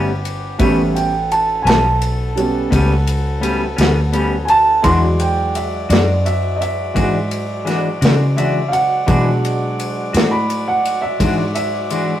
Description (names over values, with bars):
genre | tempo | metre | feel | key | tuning
slow blues | 57 BPM (dotted quarters) | 12/8 | straight | A major | A4 = 439 Hz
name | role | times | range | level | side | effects
semi-hollow electric guitar | accompaniment | 0.0-12.1 s | A2 to F#4 | -20 LUFS | left 2 dB | harmonic tremolo
warm horn section | sustained chords | 0.0-12.2 s | F#3 to D5 | -27 LUFS | equal | none
vintage muted fingered electric bass | bass | 0.0-12.2 s | G1 to C#3 | -19 LUFS | equal | none
natural country drum kit | drums | 0.3-12.1 s | kick drum, ride cymbal, snare drum | -22 LUFS | left 1 dB | none
warm upright piano | accompaniment | 0.6-12.2 s | F#3 to C6 | -18 LUFS | right 2 dB | none
room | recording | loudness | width
moderate studio reverb, RT60 0.7 s | rough rehearsal-room recording, warm saturation | -14 LUFS | side -12 dB against mid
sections
0.0-12.2 A section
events
upright piano solo 0.0-12.2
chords
0.0 A9; 4.8 E9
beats
| 0.60 1.66 2.72 3.78 | 4.84 5.90 6.96 8.02 | 9.08 10.14 11.20